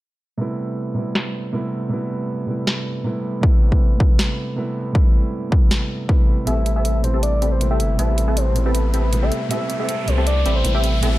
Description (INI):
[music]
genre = future bass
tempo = 158 BPM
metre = 4/4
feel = half-time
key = A minor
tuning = A4 = 441 Hz
[part]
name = dark baby grand piano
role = accompaniment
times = 0.4-11.2 s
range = C3 to E4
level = -25 LUFS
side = right 2 dB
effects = sidechain pumping, low-pass filter, tape echo
[part]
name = trap drum kit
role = drums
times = 1.2-11.1 s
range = hi-hat, snare drum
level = -24 LUFS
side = equal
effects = low-pass filter on snare, low-pass filter on hats
[part]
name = electronic kick drum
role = drums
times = 3.4-6.2 s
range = none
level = -15 LUFS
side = equal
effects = overdrive
[part]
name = soft octave-layered synth lead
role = melody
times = 6.5-11.2 s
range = B4 to E5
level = -25 LUFS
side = left 1 dB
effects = chorus, vintage 12-bit sampler grit, sidechain pumping, tape echo
[part]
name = supersaw stab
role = riff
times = 6.5-11.2 s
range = C4 to B5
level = -26 LUFS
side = equal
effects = sidechain pumping, low-pass filter
[part]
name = saturated sub bass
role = bass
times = 6.5-11.2 s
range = G1 to C2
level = -19 LUFS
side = equal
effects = sidechain pumping
[part]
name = riser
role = sound effects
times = 8.0-11.2 s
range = none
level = -31 LUFS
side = equal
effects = none
[sound]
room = little or no reverb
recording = dark, warm production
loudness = -17 LUFS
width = side -16 dB against mid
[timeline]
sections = 0.4-6.5 A section; 6.5-11.2 B section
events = filter sweep on grand piano 0.4-6.5; build-up 6.5-11.2; filter sweep on supersaw synth 6.5-11.2; riser 8.0-11.2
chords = 0.4 Am7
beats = | 0.40 0.78 1.16 1.53 | 1.91 2.29 2.67 3.05 | 3.43 3.81 4.19 4.57 | 4.95 5.33 5.71 6.09 | 6.47 6.85 7.23 7.61 | 7.99 8.37 8.75 9.13 | 9.51 9.89 10.27 10.65 | 11.03